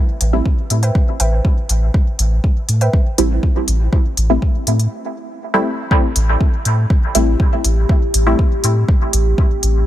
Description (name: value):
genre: dub techno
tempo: 121 BPM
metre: 4/4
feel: straight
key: A minor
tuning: A4 = 441 Hz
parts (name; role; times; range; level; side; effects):
- warm sub bass; bass; 0.2-9.8 s; A1 to A2; -15 LUFS; equal; sidechain pumping
- electronic hi-hat; drums; 0.2-9.7 s; none; -19 LUFS; left 1 dB; small room ambience
- filtered dub chord stab; stabs; 0.3-8.4 s; G3 to E4; -20 LUFS; equal; chorus, phaser, sidechain pumping, dub echo
- electronic kick drum; drums; 0.5-9.5 s; none; -14 LUFS; equal; small room ambience
- warbly dusty pluck; riff; 0.8-2.9 s; B4 to G5; -27 LUFS; right 1 dB; chorus, vintage 12-bit sampler grit, sidechain pumping, dub echo
- deep dark ambient pad; sustained chords; 7.3-9.9 s; A3 to G4; -23 LUFS; equal; chorus, built-in reverb, vintage 12-bit sampler grit, sidechain pumping
room: digital ambience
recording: none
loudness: -13 LUFS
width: side -13 dB against mid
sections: 0.0-5.9 A section; 5.9-9.9 A section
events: filter sweep on synth stab 0.0-5.9, 5.9-9.9; break 4.9-5.9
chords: 0.0 Am7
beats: 0.46 0.95 1.45 | 1.94 2.44 2.93 3.43 | 3.93 4.42 4.92 5.41 | 5.91 6.41 6.90 7.40 | 7.89 8.39 8.88 9.38